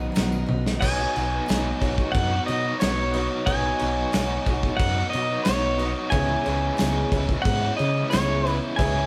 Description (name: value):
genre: folk rock and heartland rock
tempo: 90 BPM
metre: 4/4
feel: straight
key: unclear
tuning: A4 = 440 Hz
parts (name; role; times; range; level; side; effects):
- bright grand piano; accompaniment; 0.0-9.1 s; D#4 to D#5; -37 LUFS; equal; none
- picked twelve-string acoustic guitar; accompaniment; 0.0-9.1 s; C#3 to C#5; -33 LUFS; equal; none
- rich symphonic string section; sustained chords; 0.0-9.1 s; E4 to D#6; -44 LUFS; equal; none
- overdriven electric guitar; riff; 0.0-9.1 s; B2 to B4; -33 LUFS; equal; tremolo
- picked electric bass; bass; 0.0-9.0 s; B1 to C#3; -30 LUFS; equal; none
- loose indie drum kit; drums; 0.2-9.0 s; crash cymbal, kick drum, ride cymbal, snare drum, toms; -29 LUFS; equal; none
- tambourine; percussion; 0.2-8.3 s; none; -47 LUFS; equal; none
- pedal steel guitar; melody; 0.8-9.1 s; C#5 to G#5; -29 LUFS; equal; none
room: moderate studio reverb, RT60 0.8 s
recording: band playing live in one room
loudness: -24 LUFS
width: mono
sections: 0.8-9.1 A section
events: drum fill 0.5-0.8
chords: 0.0 B; 0.8 Badd9; 6.1 C#m7